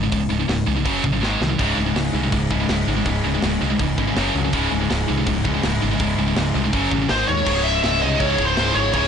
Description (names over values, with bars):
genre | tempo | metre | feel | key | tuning
heavy metal | 163 BPM | 4/4 | straight | C# harmonic minor | A4 = 441 Hz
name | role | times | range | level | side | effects
scooped high-gain guitar | riff | 0.0-9.1 s | C#2 to G#3 | -23 LUFS | right 9 dB | distortion
tight distorted guitar | riff | 0.0-9.1 s | C#2 to G#3 | -25 LUFS | left 10 dB | distortion
modern bright picked electric bass | bass | 0.0-9.1 s | C#1 to D#2 | -24 LUFS | equal | none
tight metal drum kit | drums | 0.1-9.1 s | crash cymbal, hi-hat, kick drum, snare drum | -27 LUFS | equal | soft clipping on kick
distorted electric guitar | riff | 1.6-7.5 s | C#2 to E4 | -25 LUFS | left 1 dB | overdrive
high-gain lead guitar | melody | 7.1-9.1 s | B#4 to E5 | -20 LUFS | left 2 dB | distortion
dark studio string section | sustained chords | 7.5-9.1 s | C#3 to E4 | -34 LUFS | left 2 dB | none
room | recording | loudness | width
small room ambience | blown-out, overdriven recording, overdrive, nothing above 10.5 kHz | -18 LUFS | side -7 dB against mid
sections
0.0-7.5 A section; 7.5-9.1 B section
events
drum fill 1.2-1.6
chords
0.0 C#5; 0.9 F#5; 1.2 G#5; 1.6 C#m; 4.2 F#5; 4.5 C#m; 6.7 F#5; 7.1 G#5; 7.5 C#m